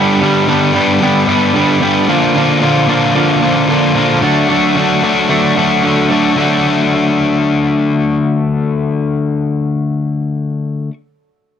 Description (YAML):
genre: rock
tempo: 112 BPM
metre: 4/4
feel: straight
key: D major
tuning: A4 = 440 Hz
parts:
  - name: crunchy overdriven guitar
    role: riff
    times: 0.0-10.9 s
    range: G2 to G4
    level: -12 LUFS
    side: left 4 dB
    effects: none
  - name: twangy electric guitar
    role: riff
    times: 0.0-10.9 s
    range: G2 to D4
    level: -15 LUFS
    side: right 6 dB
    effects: wide subtle chorus, tape echo
room: light reverb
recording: none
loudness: -11 LUFS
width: side -8 dB against mid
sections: 0.0-6.4 A section; 6.4-10.7 B section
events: none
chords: 0.0 G; 2.1 Bb; 4.2 D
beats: 0.48 1.02 1.55 | 2.09 2.62 3.16 3.69 | 4.23 4.76 5.30 5.83 | 6.37 6.90 7.44 7.97 | 8.51 9.05 9.58 10.12